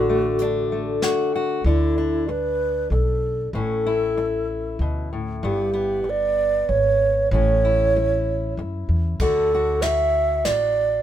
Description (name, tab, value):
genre	acoustic folk duo or small band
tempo	95 BPM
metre	3/4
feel	straight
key	unclear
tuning	A4 = 441 Hz
part	mellow hollow alto flute	melody	0.0-11.0 s	E4 to E5	-21 LUFS	right 2 dB	none
part	fingerpicked steel-string acoustic guitar	accompaniment	0.0-11.0 s	G2 to F#4	-26 LUFS	left 3 dB	none
part	upright bass	bass	0.0-11.0 s	G1 to F#2	-25 LUFS	equal	none
part	soft brush drum kit	drums	0.4-1.2, 9.2-10.6 s	hi-hat, kick drum, ride cymbal, snare drum	-29 LUFS	equal	none
room	light reverb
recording	minimal, uncompressed stereo recording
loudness	-19 LUFS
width	side -11 dB against mid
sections	0.0-1.6 A section; 1.6-11.0 B section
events	none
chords	0.0 D; 1.6 Dsus2; 3.5 A; 5.4 Em/G; 7.3 A; 9.2 Dadd9